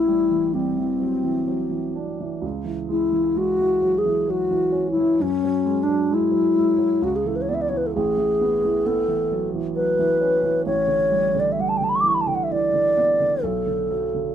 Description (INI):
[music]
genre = classical, impressionist duo for alto flute and grand piano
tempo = 65 BPM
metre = 3/4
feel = rubato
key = unclear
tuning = A4 = 440 Hz
[part]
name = mellow hollow alto flute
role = melody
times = 0.0-14.3 s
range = C4 to D6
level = -20 LUFS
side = left 2 dB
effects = none
[part]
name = dark grand piano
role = accompaniment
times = 0.0-14.3 s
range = A1 to D4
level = -25 LUFS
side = right 5 dB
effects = none
[sound]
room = light reverb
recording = minimal, uncompressed stereo recording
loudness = -19 LUFS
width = side -9 dB against mid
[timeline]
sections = 0.0-14.3 A section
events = none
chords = 0.0 C69/A; 2.4 C#m; 5.2 F#sus2; 7.0 C#m7; 7.9 Amaj9; 10.7 Gadd9/A; 13.4 Bm7